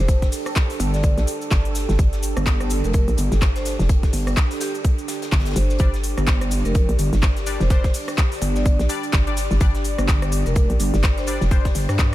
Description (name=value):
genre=bass house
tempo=126 BPM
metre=4/4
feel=swing 58% on 16ths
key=unclear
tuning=A4 = 441 Hz
part: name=vibraphone with soft mallets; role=melody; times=0.0-11.3 s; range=G4 to D5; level=-33 LUFS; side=equal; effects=diffuse ambient delay
part: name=dark analog pad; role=sustained chords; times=0.0-12.1 s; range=D4 to D5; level=-29 LUFS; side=right 1 dB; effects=chorus, sidechain pumping
part: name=hollow knocking FM bass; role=bass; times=0.0-11.7 s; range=F1 to Bb1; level=-21 LUFS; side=equal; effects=tube saturation, sidechain pumping
part: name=big-room dance drum kit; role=drums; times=0.1-12.1 s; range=handclaps, hi-hat, rim click, shaker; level=-28 LUFS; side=left 1 dB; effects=none
part: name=electronic kick drum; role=drums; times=0.1-12.1 s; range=none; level=-18 LUFS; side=equal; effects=none
part: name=modern studio drum kit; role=drums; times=0.1-12.1 s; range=hi-hat, snare drum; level=-39 LUFS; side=left 2 dB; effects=sidechain pumping on hats, high-pass filter on hats, high-pass filter on snare, high-pass filter on room
part: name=pulsing pluck wobble bass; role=bass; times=0.8-12.1 s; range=F1 to G2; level=-21 LUFS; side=equal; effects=chorus, overdrive, sidechain pumping
part: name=band-passed chord stab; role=stabs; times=5.8-11.7 s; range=G3 to D5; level=-33 LUFS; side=left 4 dB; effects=chorus, sidechain pumping, diffuse ambient delay
room=studio reverb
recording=none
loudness=-18 LUFS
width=side -15 dB against mid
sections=0.0-12.1 A section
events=none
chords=0.0 G5